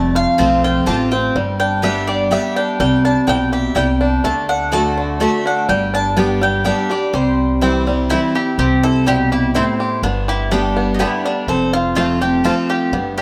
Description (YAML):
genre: bluegrass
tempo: 124 BPM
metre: 3/4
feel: straight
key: C major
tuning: A4 = 436 Hz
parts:
  - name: mandolin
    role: melody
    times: 0.0-13.2 s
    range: C4 to A5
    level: -23 LUFS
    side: equal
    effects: none
  - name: picked steel-string acoustic guitar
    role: accompaniment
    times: 0.0-13.2 s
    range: F2 to G4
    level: -20 LUFS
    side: equal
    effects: none
  - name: bluegrass banjo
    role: arpeggios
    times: 0.0-13.2 s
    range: D3 to G4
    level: -24 LUFS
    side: equal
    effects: none
  - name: upright bass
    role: bass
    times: 0.0-13.2 s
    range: F1 to D2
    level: -24 LUFS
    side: equal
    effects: none
  - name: mandolin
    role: stabs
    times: 0.4-12.5 s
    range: A3 to A5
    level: -29 LUFS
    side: equal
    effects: none
room: moderate plate reverb, RT60 2.9 s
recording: none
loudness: -17 LUFS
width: mono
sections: 0.0-8.6 A section; 8.6-13.2 A section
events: none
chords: 0.0 F; 1.4 G; 2.8 Cadd9; 4.2 D; 5.7 G; 7.1 C; 10.0 G; 11.5 F